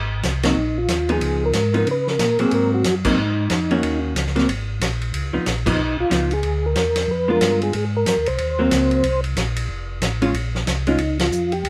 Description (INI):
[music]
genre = soul jazz organ trio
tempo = 184 BPM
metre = 4/4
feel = swing 62% on 8ths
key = Ab mixolydian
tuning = A4 = 440 Hz
[part]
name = mellow tonewheel organ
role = bass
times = 0.0-11.7 s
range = F1 to Db3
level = -26 LUFS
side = equal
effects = chorus vibrato, slow rotary speaker
[part]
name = warm soul drum kit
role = drums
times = 0.2-11.7 s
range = crash cymbal, hi-hat, kick drum, ride cymbal, snare drum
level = -27 LUFS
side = equal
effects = none
[part]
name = vintage hollow-body jazz guitar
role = accompaniment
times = 0.4-11.0 s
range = D3 to Gb4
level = -23 LUFS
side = equal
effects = none
[part]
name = percussive tonewheel organ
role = melody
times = 0.5-11.7 s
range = Eb4 to C5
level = -24 LUFS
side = equal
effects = slow rotary speaker, chorus vibrato
[sound]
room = light reverb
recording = none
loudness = -20 LUFS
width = mono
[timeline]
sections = 0.0-11.7 A section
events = band accent 0.4, 3.0, 5.6, 11.2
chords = 0.0 Abadd9; 1.2 Db9; 2.5 Ab9; 3.8 Ebm7; 4.5 Absus2; 5.1 Db9; 6.4 Ddim7; 7.7 Ab9; 9.0 Bbsus2; 9.7 F; 10.3 Bbm